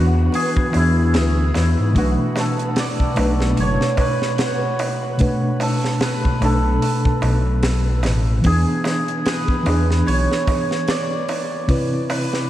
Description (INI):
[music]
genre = trip hop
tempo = 74 BPM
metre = 4/4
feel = swing 57% on 16ths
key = B dorian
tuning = A4 = 440 Hz
[part]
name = cimbalom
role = melody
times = 0.0-12.5 s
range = E4 to D5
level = -24 LUFS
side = right 1 dB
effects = tape echo
[part]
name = mellow reed electric piano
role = accompaniment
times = 0.0-12.5 s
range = B2 to B4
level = -21 LUFS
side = equal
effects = harmonic tremolo, tape echo
[part]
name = dark detuned saw bass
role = bass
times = 0.0-10.3 s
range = F#1 to G#2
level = -18 LUFS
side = equal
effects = none
[part]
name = flickering grainy texture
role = texture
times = 0.0-12.5 s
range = B4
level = -35 LUFS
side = equal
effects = none
[part]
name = darbuka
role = percussion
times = 0.1-12.5 s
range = none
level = -32 LUFS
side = right 2 dB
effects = none
[part]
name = tight funk drum kit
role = drums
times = 0.3-12.5 s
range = hi-hat, kick drum, snare drum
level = -24 LUFS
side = equal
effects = vintage 12-bit sampler grit, studio reverb
[sound]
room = wet cathedral reverb, RT60 5.0 s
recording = dreamy mix soaked in reverb, vinyl crackle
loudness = -16 LUFS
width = side -13 dB against mid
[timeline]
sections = 0.0-12.5 A section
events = none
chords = 0.0 E7; 2.0 Bm7; 8.4 E7; 11.7 Cmaj7